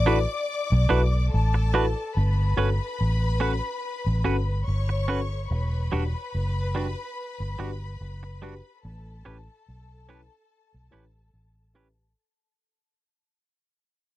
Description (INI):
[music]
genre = reggae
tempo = 72 BPM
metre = 4/4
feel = swing 54% on 16ths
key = unclear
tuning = A4 = 440 Hz
[part]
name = warm studio string section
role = second line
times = 0.0-12.1 s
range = A4 to D6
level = -32 LUFS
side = left 4 dB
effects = tape echo
[part]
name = vintage muted fingered electric bass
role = bass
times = 0.0-12.1 s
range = E1 to B1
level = -24 LUFS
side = equal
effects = none
[part]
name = mellow FM electric piano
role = accompaniment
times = 0.1-12.1 s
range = C#4 to B4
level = -29 LUFS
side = left 2 dB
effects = chorus
[part]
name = twangy electric guitar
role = stabs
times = 0.1-11.9 s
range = G3 to B4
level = -27 LUFS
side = right 6 dB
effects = none
[sound]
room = little or no reverb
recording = dry, close 1970s-style studio recording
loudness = -23 LUFS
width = side -16 dB against mid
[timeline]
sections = 0.0-12.2 A section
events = fade-out 0.0-12.2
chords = 0.0 D6; 2.1 Gmaj9#11; 5.5 Em9; 8.8 A9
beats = 0.47 1.31 | 2.14 2.98 3.81 4.65 | 5.49 6.32 7.16 7.99 | 8.83 9.66 10.50 11.33